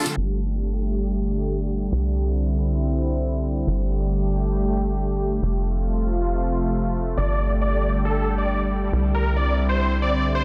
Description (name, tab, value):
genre	trance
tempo	137 BPM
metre	4/4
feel	straight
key	unclear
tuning	A4 = 438 Hz
part	supersaw chords	melody	0.0-0.1, 7.2-10.4 s	A4 to D5	-28 LUFS	equal	digital delay
part	lush unison pad	sustained chords	0.0-10.4 s	C3 to G4	-28 LUFS	equal	chorus
part	tight sequencer bass	bass	0.2-10.4 s	F1 to C2	-26 LUFS	equal	none
room	light reverb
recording	dense, heavily limited modern master, low-pass filter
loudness	-23 LUFS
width	mono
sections	0.2-10.4 A section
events	break 0.0; filter sweep 0.2-10.4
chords	0.2 Gsus2; 1.9 Cadd9; 3.7 Gsus2; 5.4 F; 7.2 Gsus2; 8.9 Cadd9